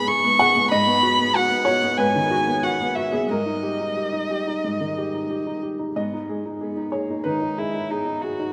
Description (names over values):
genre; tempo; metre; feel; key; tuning
neoclassical piano and strings; 92 BPM; 4/4; rubato; G# minor; A4 = 438 Hz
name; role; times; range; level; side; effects
dark violin; melody; 0.0-8.5 s; D#4 to C#6; -24 LUFS; equal; none
warm cello; second line; 0.0-8.5 s; G3 to B3; -38 LUFS; equal; none
felt-muted upright piano; accompaniment; 0.0-8.5 s; G#2 to F#5; -26 LUFS; equal; none
room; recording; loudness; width
wet plate reverb, RT60 2.8 s; rough home demo mix; -22 LUFS; mono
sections
0.0-8.5 A section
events
none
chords
0.0 E/G#; 0.7 B/G#; 3.3 D#/G#; 5.9 G#m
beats
0.07 | 0.70 1.34 1.98 2.62 | 3.28 3.95 4.62 5.28 | 5.94 6.60 7.25 7.89